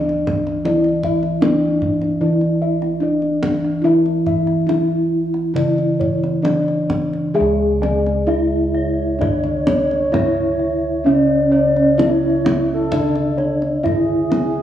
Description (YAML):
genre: Javanese gamelan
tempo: 65-79 BPM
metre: 4/4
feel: straight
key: C# pelog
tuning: A4 = 441 Hz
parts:
  - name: gamelan-type bronze metallophone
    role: melody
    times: 0.0-14.6 s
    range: C#4 to G#4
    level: -20 LUFS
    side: equal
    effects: slapback echo
  - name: gamelan-type bronze metallophone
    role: accompaniment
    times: 0.0-14.6 s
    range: C#3 to G#3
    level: -24 LUFS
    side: equal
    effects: none
  - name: gamelan-type bossed gongs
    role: arpeggios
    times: 0.0-14.4 s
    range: C#5 to E5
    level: -25 LUFS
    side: left 4 dB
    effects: none
  - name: gamelan-type bossed gongs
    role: bass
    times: 0.0-14.6 s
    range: C#2 to G#4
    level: -22 LUFS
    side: equal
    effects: none
  - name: kendang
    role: percussion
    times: 0.1-14.5 s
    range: none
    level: -23 LUFS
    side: equal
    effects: none
  - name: gamelan-type bronze metallophone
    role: arpeggios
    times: 7.4-14.6 s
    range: C#5 to G#5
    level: -27 LUFS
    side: right 1 dB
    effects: none
  - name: mellow xiao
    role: second line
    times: 8.7-14.6 s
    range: G#4 to E5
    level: -22 LUFS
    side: equal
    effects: none
room: moderate scoring stage reverb, RT60 1.8 s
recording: worn, warbling old tape, cassette tape, warbly pitch drift, studio ambience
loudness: -15 LUFS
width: side -11 dB against mid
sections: 0.0-7.4 A section; 7.4-14.6 B section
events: none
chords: none